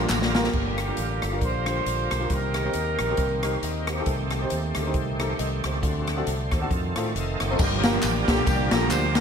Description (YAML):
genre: uptempo gospel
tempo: 136 BPM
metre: 4/4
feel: swing 57% on 8ths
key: G minor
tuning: A4 = 443 Hz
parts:
  - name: mellow horn section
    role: melody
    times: 0.0-3.9, 8.3-9.2 s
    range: Bb3 to C5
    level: -29 LUFS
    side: right 1 dB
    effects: analog delay
  - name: bright tonewheel organ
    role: sustained chords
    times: 0.0-9.2 s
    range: D3 to Bb5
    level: -30 LUFS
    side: right 2 dB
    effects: slow rotary speaker, overdrive, chorus vibrato
  - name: fingered electric bass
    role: bass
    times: 0.0-9.2 s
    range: F1 to A2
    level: -28 LUFS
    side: equal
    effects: none
  - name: swinging big-band drum kit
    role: drums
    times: 0.1-9.2 s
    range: crash cymbal, hi-hat, kick drum, ride cymbal, rim click, snare drum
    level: -27 LUFS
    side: left 1 dB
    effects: none
  - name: handclaps and tambourine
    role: percussion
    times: 0.1-0.4, 7.6-9.2 s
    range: none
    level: -34 LUFS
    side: left 1 dB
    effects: none
  - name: warm upright piano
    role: accompaniment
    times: 0.3-9.2 s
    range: G2 to Eb5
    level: -31 LUFS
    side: left 1 dB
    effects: analog chorus
room: moderate plate reverb, RT60 1.2 s, small room ambience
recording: dreamy mix soaked in reverb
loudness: -22 LUFS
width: side -7 dB against mid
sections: 0.5-7.6 A section; 7.6-9.2 B section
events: drum fill 0.0-0.5; tonewheel organ fill 0.0-0.5, 6.7-7.6; upright piano fill 3.4-4.1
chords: 0.0 Gm7; 2.3 Cm7; 4.1 Am7b5/C; 5.8 D7; 6.7 F7; 7.6 Gm7